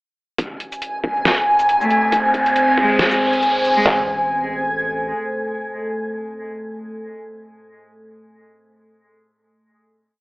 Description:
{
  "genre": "deep dubstep",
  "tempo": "138 BPM",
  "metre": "4/4",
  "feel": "swing 55% on 16ths, half-time",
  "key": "A harmonic minor",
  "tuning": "A4 = 440 Hz",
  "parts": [
    { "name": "deep dark ambient pad", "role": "sustained chords", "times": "1.8-8.1 s", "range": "A3 to C5", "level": "-25 LUFS", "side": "equal", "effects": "chorus, built-in reverb" },
    { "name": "soft dub sub bass", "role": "bass", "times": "0.4-5.1 s", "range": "A1 to C2", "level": "-38 LUFS", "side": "equal", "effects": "none" },
    { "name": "dubstep drum kit", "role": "drums", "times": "0.4-3.7 s", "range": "hi-hat, shaker, snare drum", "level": "-20 LUFS", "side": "equal", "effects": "overdrive, studio reverb" },
    { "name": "trip hop sampler-style drum kit", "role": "drums", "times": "0.4-4.0 s", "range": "handclaps, kick drum", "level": "-22 LUFS", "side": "equal", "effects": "overdrive, high-pass filter on kick, studio reverb, high-pass filter on snare" },
    { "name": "riser", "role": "sound effects", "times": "1.1-3.9 s", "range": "none", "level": "-25 LUFS", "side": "equal", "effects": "none" },
    { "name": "backwards swelling texture", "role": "texture", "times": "0.8-3.9 s", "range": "G#5", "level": "-18 LUFS", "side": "equal", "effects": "built-in reverb" },
    { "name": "rich cello", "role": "melody", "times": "1.8-3.9 s", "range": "G#3 to A3", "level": "-24 LUFS", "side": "equal", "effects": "dub echo" }
  ],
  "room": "moderate spring reverb, RT60 1.1 s",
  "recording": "echo-heavy mix, telephone sound",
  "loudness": "-16 LUFS",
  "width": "side -24 dB against mid",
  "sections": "0.4-3.9 build; 3.9-7.3 final chord",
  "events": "build-up 0.4-3.9; riser 1.1-3.9",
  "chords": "0.4 Am; 2.1 Ammaj7; 3.9 N.C.",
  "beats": "| 0.39 0.82 1.26 1.69 | 2.12 2.56 3.00 3.43 | 3.86 4.30 4.73 5.17 | 5.60 6.04 6.47 6.91"
}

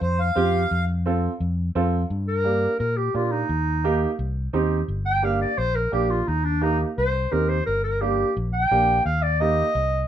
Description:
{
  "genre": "latin",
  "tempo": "173 BPM",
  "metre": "4/4",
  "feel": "straight",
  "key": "G minor",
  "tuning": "A4 = 440 Hz",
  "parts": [
    { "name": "accordion", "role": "second line", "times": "0.0-0.8 s", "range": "C5 to F5", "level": "-25 LUFS", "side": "left 1 dB", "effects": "none" },
    { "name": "fingered electric bass", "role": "bass", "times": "0.0-10.0 s", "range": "G1 to Bb2", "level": "-24 LUFS", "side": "left 1 dB", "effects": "none" },
    { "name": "warm upright piano", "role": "accompaniment", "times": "0.4-9.7 s", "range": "Bb3 to A4", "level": "-25 LUFS", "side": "right 5 dB", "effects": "none" },
    { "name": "warm clarinet", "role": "melody", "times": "2.3-10.1 s", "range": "D4 to G5", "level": "-23 LUFS", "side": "equal", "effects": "none" }
  ],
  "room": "light reverb",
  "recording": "minimal, uncompressed stereo recording",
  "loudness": "-20 LUFS",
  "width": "side -10 dB against mid",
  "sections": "0.0-2.1 A section; 2.1-10.1 B section",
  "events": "clarinet solo 2.1-10.1",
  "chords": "0.0 F; 2.1 Gm; 3.5 Eb; 4.2 Cm; 4.9 Gm; 6.3 Eb; 7.0 Cm; 7.7 Gm; 9.1 Eb",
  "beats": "0.02 0.37 | 0.71 1.06 1.41 1.76 | 2.11 2.45 2.80 3.15 | 3.50 3.85 4.19 4.54 | 4.89 5.24 5.58 5.93 | 6.28 6.63 6.97 7.32 | 7.67 8.02 8.36 8.71 | 9.06 9.41 9.75"
}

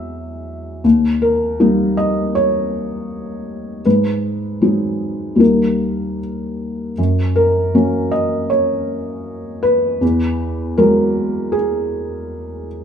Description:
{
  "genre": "neoclassical minimalist piano",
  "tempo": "79 BPM",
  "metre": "4/4",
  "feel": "rubato",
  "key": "unclear",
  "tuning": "A4 = 439 Hz",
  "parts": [
    { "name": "felt-muted upright piano", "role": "solo", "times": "0.0-12.8 s", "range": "D#2 to E5", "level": "-15 LUFS", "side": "equal", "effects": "none" }
  ],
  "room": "moderate stone room reverb, RT60 1.0 s",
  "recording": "band playing live in one room",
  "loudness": "-15 LUFS",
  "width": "side -8 dB against mid",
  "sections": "0.0-7.0 A section; 7.0-12.8 A section",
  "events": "none",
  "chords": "0.0 Eadd9; 0.8 D#7; 3.8 G#m7; 5.4 D#; 7.0 F#; 10.0 Eadd9",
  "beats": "0.09 | 0.84 1.59 2.34 3.10 | 3.85 4.61 5.39 6.19 | 6.98 7.74 8.50 9.26 | 10.02 10.78 11.54 12.30"
}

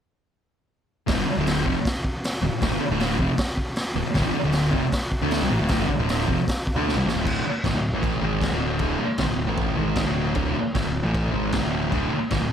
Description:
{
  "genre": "garage rock duo or trio",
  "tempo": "155 BPM",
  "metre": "4/4",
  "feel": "straight",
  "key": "D minor",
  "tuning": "A4 = 442 Hz",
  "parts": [
    { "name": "thick fuzz guitar", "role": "riff", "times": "1.1-12.5 s", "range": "D2 to D4", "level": "-23 LUFS", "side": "equal", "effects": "distortion" },
    { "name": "growling picked electric bass", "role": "bass", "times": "1.1-12.5 s", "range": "D1 to D2", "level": "-30 LUFS", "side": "equal", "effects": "overdrive" },
    { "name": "raw garage drum kit", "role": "drums", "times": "1.1-12.4 s", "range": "crash cymbal, hi-hat, kick drum, snare drum", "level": "-26 LUFS", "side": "equal", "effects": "none" }
  ],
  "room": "studio reverb",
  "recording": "none",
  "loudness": "-21 LUFS",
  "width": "side -8 dB against mid",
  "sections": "1.1-7.2 A section; 7.2-12.5 B section",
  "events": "drum fill 6.9-7.2",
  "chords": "1.1 D5",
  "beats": "| 1.07 1.46 1.84 2.23 | 2.61 3.00 3.38 3.77 | 4.15 4.54 4.92 5.31 | 5.70 6.08 6.47 6.86 | 7.25 7.64 8.03 8.41 | 8.80 9.20 9.58 9.97 | 10.36 10.75 11.14 11.53 | 11.92 12.31"
}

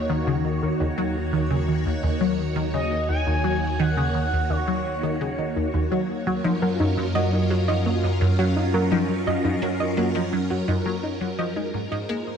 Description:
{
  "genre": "ambient, sequencer-driven space music",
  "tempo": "85 BPM",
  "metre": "4/4",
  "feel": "straight",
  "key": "Eb minor",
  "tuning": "A4 = 440 Hz",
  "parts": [
    { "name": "expressive synth lead", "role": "melody", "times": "0.0-5.6 s", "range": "Db5 to Ab5", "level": "-30 LUFS", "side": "right 1 dB", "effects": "lush chorus, tape echo" },
    { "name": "phased string machine", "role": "sustained chords", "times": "0.0-12.4 s", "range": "Eb3 to Db5", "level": "-27 LUFS", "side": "equal", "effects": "ensemble chorus, phaser" },
    { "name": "analog drone", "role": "bass", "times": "0.0-12.4 s", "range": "Eb2 to Ab2", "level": "-28 LUFS", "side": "equal", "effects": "chorus, tube saturation" },
    { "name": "resonant blip pluck", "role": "riff", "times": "0.1-12.2 s", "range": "Eb2 to Ab3", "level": "-25 LUFS", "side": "equal", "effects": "phaser, analog chorus, tape echo" },
    { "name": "soft round pluck", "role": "arpeggios", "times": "6.3-12.2 s", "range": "Bb3 to Eb5", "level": "-28 LUFS", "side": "right 2 dB", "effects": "chorus, auto-pan, tape echo" }
  ],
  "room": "moderate plate reverb, RT60 2.5 s",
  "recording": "dark, warm production",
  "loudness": "-21 LUFS",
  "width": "side -7 dB against mid",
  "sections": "0.0-12.4 A section",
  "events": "fade-out 9.7-12.4",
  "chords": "0.0 Ebm7; 5.9 Gbmaj7; 11.6 Abadd9",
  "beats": "| 0.27 0.97 1.68 2.39 | 3.09 3.80 4.50 5.21 | 5.92 6.62 7.33 8.03 | 8.74 9.45 10.15 10.86 | 11.56 12.27"
}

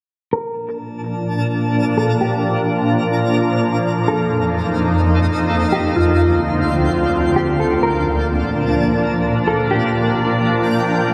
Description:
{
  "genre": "hip hop",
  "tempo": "128 BPM",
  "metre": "4/4",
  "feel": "half-time",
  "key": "Bb major",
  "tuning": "A4 = 436 Hz",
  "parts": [
    { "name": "mellow electric guitar", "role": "melody", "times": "0.3-10.1 s", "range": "F4 to Bb4", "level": "-24 LUFS", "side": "equal", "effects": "low-pass filter, dub echo" },
    { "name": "shimmering ambient pad", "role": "sustained chords", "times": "0.8-11.1 s", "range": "D2 to F4", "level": "-18 LUFS", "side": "equal", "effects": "chorus, built-in reverb, low-pass filter" },
    { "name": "twinkling granular texture", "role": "texture", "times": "1.0-11.1 s", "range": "D4 to Bb5", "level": "-28 LUFS", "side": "equal", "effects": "built-in reverb" }
  ],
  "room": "moderate echo chamber reverb, RT60 2.4 s",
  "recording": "echo-heavy mix",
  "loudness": "-17 LUFS",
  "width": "mono",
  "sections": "0.3-11.1 A section",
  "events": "filter sweep 0.3-11.1",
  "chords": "0.3 Bbmaj7; 4.1 F7; 6.0 Dm7; 7.8 Bbmaj7",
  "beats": "| 0.33 0.80 1.27 1.74 | 2.20 2.67 3.14 3.61 | 4.08 4.55 5.02 5.49 | 5.95 6.42 6.89 7.36 | 7.83 8.30 8.77 9.24 | 9.70 10.17 10.64 11.11"
}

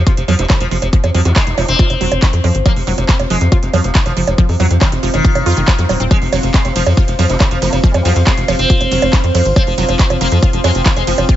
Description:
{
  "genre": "psychedelic trance",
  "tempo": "139 BPM",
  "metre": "4/4",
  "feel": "straight",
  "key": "unclear",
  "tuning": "A4 = 440 Hz",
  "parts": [
    { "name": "tight sequencer bass", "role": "bass", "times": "0.0-11.3 s", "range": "Eb1 to F2", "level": "-15 LUFS", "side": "equal", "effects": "tube saturation" },
    { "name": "sub drop", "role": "sound effects", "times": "0.0-0.9 s", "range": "none", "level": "barely audible", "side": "none", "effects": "none" },
    { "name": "deep dark ambient pad", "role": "texture", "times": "0.7-11.4 s", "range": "C4 to F5", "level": "-23 LUFS", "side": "equal", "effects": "chorus, built-in reverb, sidechain pumping" },
    { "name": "sitar", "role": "melody", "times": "0.1-11.2 s", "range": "C3 to C4", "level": "-20 LUFS", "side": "equal", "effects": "phaser, sidechain pumping, digital delay" },
    { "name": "wide unison pluck", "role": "riff", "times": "0.1-11.3 s", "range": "Eb3 to F4", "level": "-22 LUFS", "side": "right 2 dB", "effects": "auto-pan, sidechain pumping, digital delay" },
    { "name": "big-room dance drum kit", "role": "drums", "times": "0.1-11.4 s", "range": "bongos, handclaps, hi-hat, ride cymbal", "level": "-20 LUFS", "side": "right 4 dB", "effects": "none" },
    { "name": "electronic kick drum", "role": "drums", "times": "0.1-11.4 s", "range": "none", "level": "-11 LUFS", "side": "equal", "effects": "none" },
    { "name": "vowel-sweep wobble bass", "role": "second line", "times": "0.4-2.0, 6.5-8.2 s", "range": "Ab3 to F4", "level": "-28 LUFS", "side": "right 4 dB", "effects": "chorus, sidechain pumping, high-pass filter, digital delay" }
  ],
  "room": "digital ambience",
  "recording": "nothing above 7.8 kHz",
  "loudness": "-11 LUFS",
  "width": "side -12 dB against mid",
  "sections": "0.0-11.4 A section",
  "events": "impact 0.0-0.9",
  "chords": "0.0 F5",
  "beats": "0.07 0.50 | 0.93 1.36 1.79 2.22 | 2.66 3.09 3.52 3.95 | 4.38 4.81 5.25 5.68 | 6.11 6.54 6.97 7.40 | 7.84 8.27 8.70 9.13 | 9.56 9.99 10.43 10.86 | 11.29"
}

